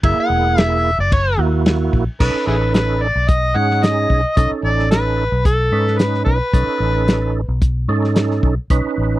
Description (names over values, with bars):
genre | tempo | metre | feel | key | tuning
straight-eighth soul blues | 111 BPM | 4/4 | straight | B mixolydian | A4 = 440 Hz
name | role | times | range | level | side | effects
percussive tonewheel organ | accompaniment | 0.0-9.2 s | A#3 to B4 | -21 LUFS | right 6 dB | slow rotary speaker, overdrive, chorus vibrato
vintage muted fingered electric bass | bass | 0.0-9.2 s | E1 to G#2 | -19 LUFS | equal | none
warm soul drum kit | drums | 0.0-8.8 s | crash cymbal, hi-hat, kick drum, ride cymbal, snare drum | -16 LUFS | equal | none
overdriven harmonica | melody | 0.1-7.6 s | E4 to F#5 | -18 LUFS | left 1 dB | none
room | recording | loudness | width
little or no reverb | dry, close 1970s-style studio recording, faint mains hum | -14 LUFS | side -16 dB against mid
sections
0.0-2.2 A section; 2.2-9.2 B section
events
harmonica solo 0.0-2.2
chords
0.0 F#9; 2.2 B9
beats
| 0.03 0.57 1.11 1.65 | 2.19 2.73 3.28 3.82 | 4.36 4.90 5.45 5.99 | 6.53 7.07 7.62 8.16 | 8.70